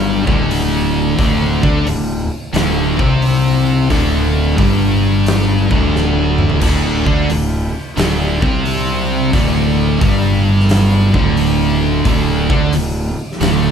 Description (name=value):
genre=stoner and doom metal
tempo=88 BPM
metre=4/4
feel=swing 66% on 8ths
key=unclear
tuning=A4 = 442 Hz
part: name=high-gain distorted guitar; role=riff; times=0.0-13.7 s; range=D2 to D4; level=-20 LUFS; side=right 1 dB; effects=distortion
part: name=thick fuzz guitar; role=riff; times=0.0-13.7 s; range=D2 to D4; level=-18 LUFS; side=left 5 dB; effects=distortion
part: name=thick fuzz guitar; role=riff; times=0.0-13.7 s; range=D2 to D4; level=-19 LUFS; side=right 5 dB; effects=distortion
part: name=fuzz fingered electric bass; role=bass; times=0.0-13.7 s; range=D1 to D2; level=-19 LUFS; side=equal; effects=overdrive
part: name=big rock drum kit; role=drums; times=0.3-13.6 s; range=crash cymbal, hi-hat, kick drum, snare drum, toms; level=-19 LUFS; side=equal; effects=none
room=moderate large studio reverb, RT60 1.4 s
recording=band playing live in one room, lossy compression artefacts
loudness=-12 LUFS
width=side -7 dB against mid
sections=0.0-13.7 A section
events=drum fill 5.9-6.6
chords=none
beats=0.50 | 1.18 1.86 2.54 3.22 | 3.90 4.58 5.26 5.94 | 6.62 7.30 7.98 8.66 | 9.34 10.02 10.70 11.37 | 12.05 12.73 13.41